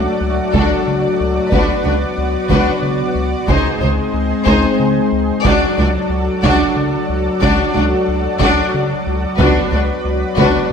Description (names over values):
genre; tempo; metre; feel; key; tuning
cinematic, hybrid orchestral and electronic film score; 61 BPM (dotted quarters); 6/8; straight; unclear; A4 = 444 Hz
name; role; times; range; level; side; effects
analog string pad; sustained chords; 0.0-10.7 s; F#3 to D5; -21 LUFS; equal; ensemble chorus
mellow French horn section; sustained chords; 0.0-10.7 s; F#3 to D5; -21 LUFS; left 3 dB; none
harp-like synth pluck; arpeggios; 0.0-10.6 s; G#3 to B4; -27 LUFS; right 5 dB; none
round analog bass; riff; 0.0-10.6 s; C#2 to C#3; -21 LUFS; left 1 dB; none
warm symphonic violin section; melody; 0.5-10.7 s; A4 to D5; -23 LUFS; left 4 dB; none
dark symphonic double bass section; bass; 0.5-10.5 s; C#2; -24 LUFS; right 4 dB; none
rich symphonic cello section; bass; 0.5-10.5 s; C#2; -22 LUFS; right 2 dB; none
taiko ensemble; drums; 0.5-10.7 s; none; -23 LUFS; equal; none
warm symphonic violin section; second line; 0.6-10.7 s; F#4 to G#4; -24 LUFS; left 4 dB; none
clear symphonic viola section; accompaniment; 0.6-10.7 s; D4 to D#4; -22 LUFS; equal; none
room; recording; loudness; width
wet scoring stage reverb, RT60 2.0 s; none; -13 LUFS; side -7 dB against mid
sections
0.0-10.7 A section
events
none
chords
0.0 D/C#; 1.5 Bm/C#; 3.5 G#/C#; 5.5 D/C#; 9.4 Bm/C#